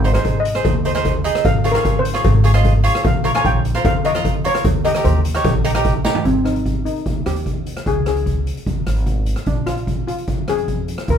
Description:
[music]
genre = calypso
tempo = 150 BPM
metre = 4/4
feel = straight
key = Ab major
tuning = A4 = 440 Hz
[part]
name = steel pan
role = melody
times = 0.0-11.2 s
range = C4 to Ab5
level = -22 LUFS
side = left 2 dB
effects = none
[part]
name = cavaquinho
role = accompaniment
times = 0.0-6.2 s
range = Eb4 to Eb5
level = -21 LUFS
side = right 3 dB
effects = none
[part]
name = upright bass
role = bass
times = 0.0-11.2 s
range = Ab1 to F2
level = -20 LUFS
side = equal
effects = none
[part]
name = street-band drum kit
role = drums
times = 0.0-11.2 s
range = hi-hat, kick drum, rim click, snare drum, toms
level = -20 LUFS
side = equal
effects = none
[part]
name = cowbell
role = percussion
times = 0.2-5.9 s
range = none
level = -26 LUFS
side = left 4 dB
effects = none
[sound]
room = moderate studio ambience, RT60 0.5 s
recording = band playing live in one room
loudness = -15 LUFS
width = side -8 dB against mid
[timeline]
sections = 0.0-6.2 A section; 6.2-11.2 B section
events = steel pan solo 0.0-6.2; drum fill 6.0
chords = 0.0 Ab; 1.4 Dbmaj7/Ab; 3.0 Bbm; 4.6 Eb; 6.2 Ab5; 7.9 Db5; 9.5 Bb5

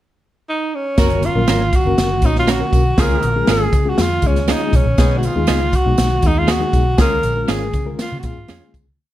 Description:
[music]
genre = uptempo 1960s-style soul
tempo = 120 BPM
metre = 4/4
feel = straight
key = F# major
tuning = A4 = 440 Hz
[part]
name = breathy tenor saxophone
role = melody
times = 0.5-8.8 s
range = C#4 to A#4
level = -20 LUFS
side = equal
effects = slapback echo
[part]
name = warm horn section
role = second line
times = 1.0-7.3 s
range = B3 to A#4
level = -25 LUFS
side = right 1 dB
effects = none
[part]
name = reed electric piano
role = accompaniment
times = 1.0-8.8 s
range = F#3 to C#5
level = -24 LUFS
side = left 4 dB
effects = fast tremolo
[part]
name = vintage muted fingered electric bass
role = bass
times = 1.0-9.0 s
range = F#1 to C#3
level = -20 LUFS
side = equal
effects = none
[part]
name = swinging big-band drum kit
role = drums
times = 1.0-8.9 s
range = hi-hat, kick drum, snare drum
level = -18 LUFS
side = equal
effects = none
[part]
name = congas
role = percussion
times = 1.0-8.7 s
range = none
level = -35 LUFS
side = right 1 dB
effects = none
[part]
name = tambourine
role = percussion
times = 1.0-8.9 s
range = none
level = -38 LUFS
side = right 6 dB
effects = none
[part]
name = electric guitar at the edge of break-up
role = stabs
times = 1.5-8.6 s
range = G#3 to A#4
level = -22 LUFS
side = right 6 dB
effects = tremolo
[sound]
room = light reverb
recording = dark, warm production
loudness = -14 LUFS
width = side -14 dB against mid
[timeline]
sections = 0.0-1.0 pickup bar; 1.0-9.0 verse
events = fade-out 7.0-9.0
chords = 0.0 N.C.; 1.0 F#; 3.0 C#; 5.0 G#m/B; 7.0 C#

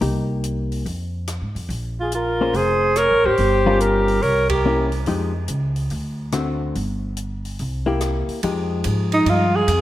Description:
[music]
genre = jazz, small-group swing and bop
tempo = 143 BPM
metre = 4/4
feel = swing 66% on 8ths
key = F minor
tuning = A4 = 440 Hz
[part]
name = hollow-body jazz guitar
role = accompaniment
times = 0.0-9.6 s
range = D3 to C5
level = -24 LUFS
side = left 3 dB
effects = none
[part]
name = upright bass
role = bass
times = 0.0-9.8 s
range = F1 to Ab2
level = -23 LUFS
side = equal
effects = none
[part]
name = compact cocktail drum kit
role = drums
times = 0.0-9.8 s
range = hi-hat, kick drum, ride cymbal, rim click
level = -33 LUFS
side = right 1 dB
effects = none
[part]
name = breathy flugelhorn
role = melody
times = 2.0-4.9 s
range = Ab4 to Db5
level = -22 LUFS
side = left 2 dB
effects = none
[part]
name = breathy alto saxophone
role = second line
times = 2.0-4.9, 9.1-9.8 s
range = Eb4 to Bb4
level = -19 LUFS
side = right 2 dB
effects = none
[sound]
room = moderate lush hall reverb, RT60 1.6 s, studio ambience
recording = rough home demo mix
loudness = -18 LUFS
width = side -14 dB against mid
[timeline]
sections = 0.0-8.4 A section; 8.4-9.8 B section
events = band accent 4.4; alto saxophone solo 8.4-9.8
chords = 0.0 Cm7; 0.9 Fm; 1.7 Bb7sus2; 3.4 Gm7b5; 4.2 C7b9; 5.1 Fm9; 5.9 D7; 6.7 N.C.; 7.6 C7; 8.4 Fm9

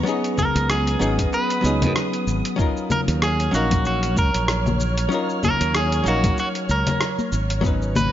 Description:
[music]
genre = sunset chillout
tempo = 95 BPM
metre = 4/4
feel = swing 57% on 16ths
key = Eb minor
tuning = A4 = 442 Hz
[part]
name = hollow-body jazz guitar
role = accompaniment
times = 0.0-8.1 s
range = Gb3 to F5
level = -25 LUFS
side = moving between left 4 dB and right 3 dB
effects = auto-pan, ping-pong delay
[part]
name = soft string machine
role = sustained chords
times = 0.0-8.1 s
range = Cb4 to F6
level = -29 LUFS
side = right 1 dB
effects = ensemble chorus
[part]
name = dusty soul sampler-style drum kit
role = drums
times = 0.1-8.1 s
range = congas, hi-hat, rim click, shaker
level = -26 LUFS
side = left 2 dB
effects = none
[part]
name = clean electric guitar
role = melody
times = 0.4-8.1 s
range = Gb4 to Cb5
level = -25 LUFS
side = right 1 dB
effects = tape echo
[part]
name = electronic kick drum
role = drums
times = 0.4-7.8 s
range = none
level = -23 LUFS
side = equal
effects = none
[part]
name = modern bright fingered electric bass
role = bass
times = 0.6-8.1 s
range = Ab1 to Gb2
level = -22 LUFS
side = equal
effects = none
[part]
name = congas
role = percussion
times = 2.9-8.1 s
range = none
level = -28 LUFS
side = left 4 dB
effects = none
[sound]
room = light reverb, digital ambience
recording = nothing above 7.5 kHz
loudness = -18 LUFS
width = side -11 dB against mid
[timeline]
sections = 0.0-8.1 A section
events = none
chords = 0.1 Db9sus4; 2.6 Ebm9

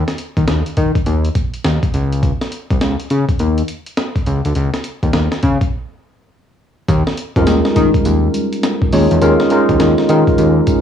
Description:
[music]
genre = R&B, new jack swing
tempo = 103 BPM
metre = 4/4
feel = swing 64% on 16ths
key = unclear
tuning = A4 = 440 Hz
[part]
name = fat analog bass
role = bass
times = 0.0-10.6 s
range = C2 to Eb3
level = -15 LUFS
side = left 1 dB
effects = none
[part]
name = breakbeat sampler-style drum kit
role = drums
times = 0.1-10.8 s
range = hi-hat, kick drum, snare drum, tambourine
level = -18 LUFS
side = equal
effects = cassette tape
[part]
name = tine electric piano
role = accompaniment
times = 7.4-10.8 s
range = G3 to Db5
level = -13 LUFS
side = right 1 dB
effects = medium tremolo, cassette tape
[sound]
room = little or no reverb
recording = home recording on cassette, studio ambience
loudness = -13 LUFS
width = side -8 dB against mid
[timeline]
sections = 0.0-6.9 A section; 6.9-10.8 B section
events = break 5.7-6.9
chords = 0.0 N.C.; 1.9 Dbsus2; 6.9 Eb9sus4

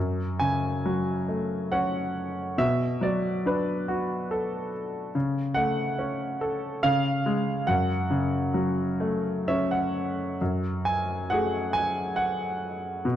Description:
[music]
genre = classical, lyrical solo piano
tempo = 62-73 BPM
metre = 3/4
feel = rubato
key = F# minor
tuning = A4 = 440 Hz
[part]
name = clear grand piano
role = solo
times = 0.0-13.2 s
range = F#2 to G#5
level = -25 LUFS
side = equal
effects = none
[sound]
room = moderate concert hall reverb, RT60 2.0 s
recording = dark, warm production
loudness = -25 LUFS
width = side -11 dB against mid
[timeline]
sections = 0.0-10.4 A section; 10.4-13.2 B section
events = grand piano fill 9.0-10.4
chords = 0.0 F#madd9; 2.6 Bm7; 5.2 F#m/C#; 6.8 C#; 7.7 F#m; 10.4 F#madd9

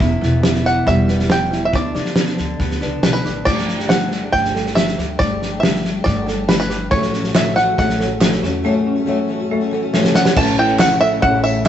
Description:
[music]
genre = indie folk with a building arrangement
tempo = 139 BPM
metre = 4/4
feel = straight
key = unclear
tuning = A4 = 440 Hz
[part]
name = fingerpicked steel-string acoustic guitar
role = accompaniment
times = 0.0-5.2 s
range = D2 to E4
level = -24 LUFS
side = equal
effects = none
[part]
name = buzzing marimba with hard mallets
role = arpeggios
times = 0.0-11.7 s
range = A3 to C#5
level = -24 LUFS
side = equal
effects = none
[part]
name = upright bass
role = bass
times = 0.0-11.7 s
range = E1 to D3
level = -24 LUFS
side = equal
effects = none
[part]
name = loose indie drum kit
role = drums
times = 0.0-11.7 s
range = crash cymbal, kick drum, snare drum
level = -18 LUFS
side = equal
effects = none
[part]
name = bluegrass banjo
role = melody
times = 0.7-11.7 s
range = B4 to A5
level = -19 LUFS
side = right 1 dB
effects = none
[part]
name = picked twelve-string acoustic guitar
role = accompaniment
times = 3.5-11.7 s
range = A2 to G4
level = -26 LUFS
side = left 3 dB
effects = none
[part]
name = felt-muted upright piano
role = accompaniment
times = 6.9-11.7 s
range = A1 to E5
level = -23 LUFS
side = left 4 dB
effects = none
[part]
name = group handclap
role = percussion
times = 7.4-11.7 s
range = none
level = -30 LUFS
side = right 2 dB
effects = none
[part]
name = warm French horn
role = second line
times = 10.2-11.7 s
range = C#3 to E3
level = -28 LUFS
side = right 1 dB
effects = none
[part]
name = tambourine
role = percussion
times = 10.4-11.5 s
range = none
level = -33 LUFS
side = left 4 dB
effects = none
[sound]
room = moderate stone room reverb, RT60 1.1 s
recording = rough rehearsal-room recording, nothing above 8.0 kHz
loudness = -14 LUFS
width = side -10 dB against mid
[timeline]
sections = 0.0-3.5 A section; 3.5-10.4 B section; 10.4-11.7 C section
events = drum fill 9.9-10.4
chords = 0.0 Em; 1.7 Bm/D; 3.5 Gsus2; 6.9 A6; 10.4 A

